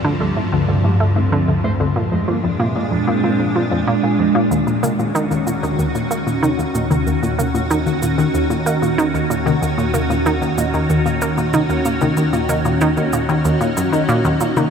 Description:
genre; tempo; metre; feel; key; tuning
ambient, sequencer-driven space music; 94 BPM; 4/4; straight; Eb minor from 4.5 s; A4 = 439 Hz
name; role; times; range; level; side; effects
evolving wavetable pad; sustained chords; 0.0-14.7 s; D2 to Gb4; -19 LUFS; equal; ensemble chorus, built-in reverb, phaser, shimmer reverb
analog pluck; riff; 0.0-14.6 s; D2 to Bb3; -19 LUFS; equal; chorus, tape echo
mellow electric guitar; arpeggios; 0.2-14.6 s; C3 to Eb5; -28 LUFS; right 1 dB; none
fat analog bass; bass; 4.5-14.7 s; Eb2; -27 LUFS; equal; none
electronic shaker and toms; percussion; 4.5-14.7 s; none; -27 LUFS; left 3 dB; tape echo
room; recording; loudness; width
wet huge ambient reverb, RT60 7.7 s; none; -15 LUFS; side -7 dB against mid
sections
0.0-4.5 A section; 4.5-14.7 B section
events
none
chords
0.0 Dm; 2.0 Bb7; 4.5 Ebm7

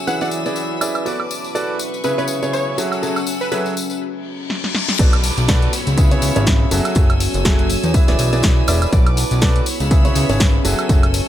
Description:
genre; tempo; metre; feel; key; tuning
piano house; 122 BPM; 4/4; swing 57% on 16ths; B dorian; A4 = 440 Hz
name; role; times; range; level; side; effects
bright chamber violin section; sustained chords; 0.0-11.3 s; A4 to E6; -28 LUFS; equal; sidechain pumping
deep dark ambient pad; texture; 0.0-11.3 s; B3 to E5; -26 LUFS; equal; chorus, built-in reverb, sidechain pumping
plucky unison lead; melody; 0.1-3.6 s; B4 to F#5; -26 LUFS; left 1 dB; ping-pong delay
bright upright piano; riff; 0.1-11.0 s; C#3 to E5; -23 LUFS; right 1 dB; sidechain pumping, ping-pong delay
tambourine; percussion; 0.1-11.3 s; none; -29 LUFS; left 6 dB; none
punchy analog drum machine; drums; 0.8-11.3 s; crash cymbal, hi-hat, snare drum, woodblock; -23 LUFS; equal; low-pass filter on perc, low-pass filter on snare, low-pass filter on hats, low-pass filter on cymbals, low-pass filter on room
reverse cymbal and downlifter; sound effects; 4.3-8.9 s; none; -26 LUFS; left 2 dB; none
fat analog bass; bass; 5.0-11.2 s; D1 to E2; -19 LUFS; equal; sidechain pumping
electronic kick drum; drums; 5.0-11.0 s; none; -15 LUFS; equal; none
room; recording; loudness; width
digital ambience; none; -15 LUFS; side -12 dB against mid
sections
0.0-5.0 A section; 5.0-11.3 B section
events
reverse cymbal 4.3-5.0; drum fill 4.5-5.0; drop 5.0-11.3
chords
0.1 E7; 1.1 Bm7; 1.8 C#m7; 2.8 F#m9; 4.0 N.C.; 5.0 Bm7; 5.7 C#m7; 6.7 F#m9; 7.9 E7; 8.9 Bm7; 9.7 C#m7; 10.6 F#m9

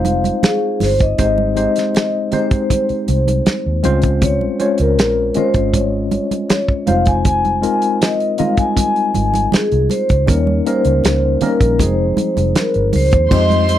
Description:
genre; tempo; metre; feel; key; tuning
lush 1970s-style soul; 79 BPM; 4/4; straight; F minor; A4 = 442 Hz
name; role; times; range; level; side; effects
vibraphone with soft mallets; melody; 0.0-13.8 s; Ab4 to Ab5; -18 LUFS; left 1 dB; none
barky tine electric piano; accompaniment; 0.0-13.8 s; F3 to Eb5; -19 LUFS; left 2 dB; medium stereo tremolo
vintage muted fingered electric bass; bass; 0.0-13.8 s; F1 to F2; -18 LUFS; equal; none
congas; percussion; 0.0-13.8 s; none; -23 LUFS; right 7 dB; none
warm soul drum kit; drums; 0.1-13.8 s; crash cymbal, hi-hat, kick drum, snare drum; -17 LUFS; right 1 dB; none
warm studio violin section; second line; 13.3-13.8 s; C5 to C6; -20 LUFS; right 3 dB; none
room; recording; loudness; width
little or no reverb; dry, close 1970s-style studio recording; -13 LUFS; side -11 dB against mid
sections
0.0-1.2 A section; 1.2-13.3 A section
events
none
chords
0.0 Fm7; 1.2 Abmaj7; 3.8 Dbmaj7; 6.9 Fm7; 10.3 Eb7; 11.8 Fm7

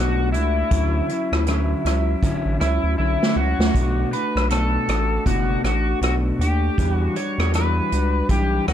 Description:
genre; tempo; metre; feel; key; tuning
indie pop, bedroom pop; 79 BPM; 4/4; swing 60% on 16ths; B minor; A4 = 442 Hz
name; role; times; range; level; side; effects
overdriven slide guitar; melody; 0.0-8.7 s; E4 to C#5; -25 LUFS; left 1 dB; wide subtle chorus, tape echo
electric guitar at the edge of break-up; accompaniment; 0.0-8.7 s; B2 to F#4; -25 LUFS; left 2 dB; lush chorus, warbly pitch drift
round analog bass; bass; 0.0-8.7 s; F#1 to E2; -22 LUFS; equal; none
unplugged drum kit; drums; 0.3-8.7 s; hi-hat, kick drum, rim click, snare drum; -24 LUFS; right 1 dB; none
room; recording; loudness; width
light reverb; dark, warm production; -18 LUFS; side -10 dB against mid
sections
0.0-8.7 A section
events
drum fill 3.0-3.7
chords
0.0 Bm7; 0.7 Dmaj9; 3.7 Bm7; 6.8 Em9

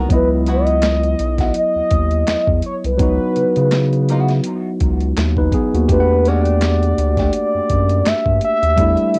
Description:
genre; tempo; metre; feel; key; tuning
R&B, neo-soul; 83 BPM; 4/4; swing 56% on 16ths; unclear; A4 = 440 Hz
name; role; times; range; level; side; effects
vintage hollow-body jazz guitar; second line; 0.0-7.3 s; A3 to G4; -31 LUFS; equal; wah, cassette tape, analog delay
overdriven tine electric piano; accompaniment; 0.0-9.2 s; F#3 to F#5; -23 LUFS; equal; cassette tape
round analog bass; bass; 0.0-9.2 s; B1 to E3; -20 LUFS; equal; none
mellow horn-like synth lead; melody; 0.1-9.2 s; B4 to E5; -21 LUFS; equal; chorus, phaser
dusty soul sampler-style drum kit; drums; 0.1-9.2 s; handclaps, hi-hat, kick drum, snare drum; -23 LUFS; equal; overdrive, cassette tape
room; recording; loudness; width
light reverb; home recording on cassette; -16 LUFS; mono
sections
0.1-9.2 A section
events
none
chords
0.1 C#m11; 5.9 Em11

